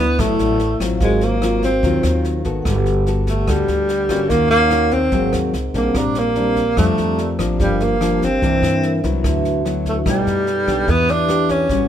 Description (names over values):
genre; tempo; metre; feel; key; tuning
bossa nova; 146 BPM; 4/4; straight; unclear; A4 = 440 Hz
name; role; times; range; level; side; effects
breathy tenor saxophone; melody; 0.0-11.9 s; G3 to D4; -18 LUFS; right 1 dB; none
nylon-string guitar; accompaniment; 0.0-11.9 s; G2 to A4; -22 LUFS; left 4 dB; none
vibraphone with medium mallets; accompaniment; 0.0-11.9 s; B#3 to Bb5; -25 LUFS; right 2 dB; none
upright bass; bass; 0.0-11.9 s; G1 to G2; -22 LUFS; equal; none
jazz brush drum kit; drums; 0.2-11.8 s; kick drum, rim click, snare drum; -26 LUFS; right 1 dB; none
room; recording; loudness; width
light reverb; minimal, uncompressed stereo recording; -15 LUFS; side -10 dB against mid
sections
0.0-11.9 A section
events
none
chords
0.0 D69; 1.0 G#13; 2.7 Gmaj9; 4.3 Ebm7; 5.1 G#9; 5.9 Bb69; 7.6 Gm7; 8.4 C9; 9.2 D69; 10.1 B7b13; 10.9 Em7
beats
0.19 0.60 | 1.01 1.43 1.84 2.25 | 2.66 3.07 3.48 3.89 | 4.30 4.71 5.13 5.54 | 5.95 6.36 6.77 7.18 | 7.59 8.00 8.41 8.82 | 9.24 9.65 10.06 10.47 | 10.88 11.29 11.70